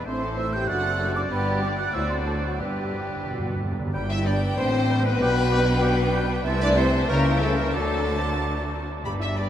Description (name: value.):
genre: quick classical-period movement for symphony orchestra.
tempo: 89-98 BPM.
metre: 2/4.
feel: rubato.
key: G major.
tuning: A4 = 438 Hz.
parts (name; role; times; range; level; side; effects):
rich chamber violin section; melody; 0.0-9.4 s; F#4 to B5; -34 LUFS; right 1 dB; none.
clear clarinet; second line; 0.0-9.5 s; A4 to E5; -34 LUFS; left 3 dB; none.
clear oboe; second line; 0.0-9.5 s; B4 to B5; -35 LUFS; right 1 dB; none.
mellow hollow silver concert flute; second line; 0.0-9.5 s; F#5 to G6; -33 LUFS; right 3 dB; none.
warm studio violin section; second line; 0.0-9.5 s; F#4 to G5; -31 LUFS; equal; none.
rich symphonic viola section; accompaniment; 0.0-9.5 s; G3 to G4; -34 LUFS; right 2 dB; none.
warm bassoon; accompaniment; 0.0-9.5 s; E3 to A3; -36 LUFS; left 2 dB; none.
dark French horn section; sustained chords; 0.0-9.5 s; F#3 to G4; -31 LUFS; left 1 dB; none.
clear chamber double bass section; bass; 0.0-9.5 s; F#1 to D2; -28 LUFS; equal; none.
rich studio cello section; bass; 0.1-9.5 s; D2 to D3; -28 LUFS; equal; none.
timpani; percussion; 2.6-3.9 s; G2; -33 LUFS; right 2 dB; none.
bright trumpet section; stabs; 4.1-9.5 s; A4 to E5; -32 LUFS; left 3 dB; none.
room: moderate huge ambient reverb, RT60 9.0 s.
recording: in a vast, echoing space.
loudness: -21 LUFS.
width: side -10 dB against mid.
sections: 0.0-3.9 A section; 3.9-9.5 B section.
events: timpani fill 2.6-3.9.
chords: 0.1 Am; 0.7 D7/F#; 1.3 G; 1.9 D7; 2.6 G; 5.2 G/B; 6.5 Am/C; 7.1 C#dim7; 7.7 D.